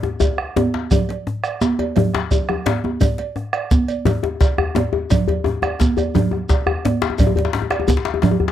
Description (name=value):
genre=west african traditional, West African drum ensemble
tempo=115 BPM (dotted quarters)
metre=12/8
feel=straight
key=none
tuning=none
part: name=bombo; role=percussion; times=0.0-8.5 s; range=none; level=-20 LUFS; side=right 1 dB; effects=none
part: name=djembe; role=percussion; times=0.0-8.4 s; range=none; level=-23 LUFS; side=left 2 dB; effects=none
part: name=djembe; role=percussion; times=0.0-8.5 s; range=none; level=-21 LUFS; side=left 6 dB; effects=none
part: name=cowbell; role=percussion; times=0.2-8.4 s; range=none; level=-28 LUFS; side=right 10 dB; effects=none
part: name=shekere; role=percussion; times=0.2-8.3 s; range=none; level=-27 LUFS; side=right 2 dB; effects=none
part: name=congas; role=percussion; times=0.6-8.4 s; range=none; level=-21 LUFS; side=right 5 dB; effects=none
room=light reverb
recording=dry, close 1970s-style studio recording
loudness=-16 LUFS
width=side -11 dB against mid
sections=0.0-8.5 A section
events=drum fill 2.3-3.0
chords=none